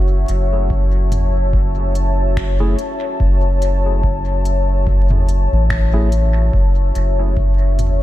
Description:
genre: ambient dub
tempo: 72 BPM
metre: 4/4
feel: swing 57% on 16ths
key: F# minor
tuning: A4 = 440 Hz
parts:
  - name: deep dark ambient pad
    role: sustained chords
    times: 0.0-8.0 s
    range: F#4 to A5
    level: -22 LUFS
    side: left 2 dB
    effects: chorus, built-in reverb
  - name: soft dub sub bass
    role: bass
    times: 0.0-8.0 s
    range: F#1 to A1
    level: -15 LUFS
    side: equal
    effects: none
  - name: organic electronic drum kit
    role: drums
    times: 0.3-8.0 s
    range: finger snaps, hi-hat, toms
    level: -27 LUFS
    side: equal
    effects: studio reverb, dub echo
  - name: electronic kick drum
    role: drums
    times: 0.7-7.6 s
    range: none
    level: -21 LUFS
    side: equal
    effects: none
  - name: tine electric piano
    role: stabs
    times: 2.6-6.1 s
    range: A3 to G#4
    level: -28 LUFS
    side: right 1 dB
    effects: dub echo
room: digital ambience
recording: vinyl crackle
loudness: -14 LUFS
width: side -14 dB against mid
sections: 0.0-8.0 A section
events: none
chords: 0.0 F#m7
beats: 0.70 1.54 2.37 | 3.20 4.04 4.87 5.70 | 6.54 7.37

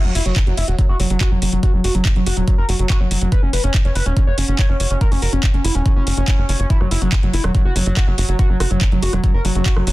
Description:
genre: psychedelic trance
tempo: 142 BPM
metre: 4/4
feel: straight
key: F# major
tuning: A4 = 438 Hz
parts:
  - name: overdriven synth lead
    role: melody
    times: 0.0-9.9 s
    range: F#3 to C#5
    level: -22 LUFS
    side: equal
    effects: distortion, phaser, sidechain pumping, digital delay
  - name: tight sequencer bass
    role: bass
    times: 0.0-9.9 s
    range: E1 to F#1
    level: -18 LUFS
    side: equal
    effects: none
  - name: granular cloud pad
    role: texture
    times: 0.0-9.9 s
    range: F#4 to A#5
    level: -38 LUFS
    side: right 2 dB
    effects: none
  - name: drum and bass drum kit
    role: drums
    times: 0.2-9.9 s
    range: handclaps, hi-hat, rim click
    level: -25 LUFS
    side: equal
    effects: none
  - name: electronic kick drum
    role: drums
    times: 0.4-9.7 s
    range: none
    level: -16 LUFS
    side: equal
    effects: none
room: digital ambience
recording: dense, heavily limited modern master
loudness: -14 LUFS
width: side -18 dB against mid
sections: 0.0-9.9 A section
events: none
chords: 0.0 F#5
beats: 0.36 0.79 1.21 | 1.63 2.05 2.48 2.90 | 3.32 3.74 4.17 4.59 | 5.01 5.43 5.86 6.28 | 6.70 7.12 7.55 7.97 | 8.39 8.81 9.24 9.66

